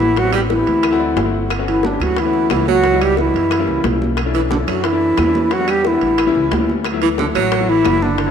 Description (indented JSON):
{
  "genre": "Afro-Cuban jazz",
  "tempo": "180 BPM",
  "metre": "4/4",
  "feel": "straight",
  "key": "D major",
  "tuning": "A4 = 440 Hz",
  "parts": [
    { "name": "hollow concert flute", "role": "melody", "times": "0.0-8.3 s", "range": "D4 to G4", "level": "-17 LUFS", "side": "left 1 dB", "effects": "none" },
    { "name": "breathy tenor saxophone", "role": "second line", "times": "0.0-8.3 s", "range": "D3 to G3", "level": "-22 LUFS", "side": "right 8 dB", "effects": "tape echo" },
    { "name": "warm concert grand piano", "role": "accompaniment", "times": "0.0-8.3 s", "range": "F#3 to F#5", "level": "-23 LUFS", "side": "left 10 dB", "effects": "none" },
    { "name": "upright bass", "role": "bass", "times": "0.0-8.3 s", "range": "F#1 to F#2", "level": "-22 LUFS", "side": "right 1 dB", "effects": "none" },
    { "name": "bongos", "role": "percussion", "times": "0.0-8.3 s", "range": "none", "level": "-26 LUFS", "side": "left 12 dB", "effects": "none" },
    { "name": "congas", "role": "percussion", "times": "0.0-8.3 s", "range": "none", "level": "-26 LUFS", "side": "equal", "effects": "none" },
    { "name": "timbales", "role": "percussion", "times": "0.2-8.3 s", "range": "none", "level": "-28 LUFS", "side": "right 12 dB", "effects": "none" },
    { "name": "claves", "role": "percussion", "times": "0.3-8.0 s", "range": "none", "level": "-34 LUFS", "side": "left 12 dB", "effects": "none" }
  ],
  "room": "wet echo chamber reverb, RT60 2.5 s",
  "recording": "1960s-style stereo with parts hard left and right",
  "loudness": "-14 LUFS",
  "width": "side -8 dB against mid",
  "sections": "0.0-8.3 A section",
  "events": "grand piano fill 0.8-1.5",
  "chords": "0.2 Am7; 0.8 D7; 1.5 Gmaj9#11; 2.8 C#m7b5; 3.5 F#7b9; 4.2 Bm11; 5.5 Em7; 6.2 A7; 6.9 D69"
}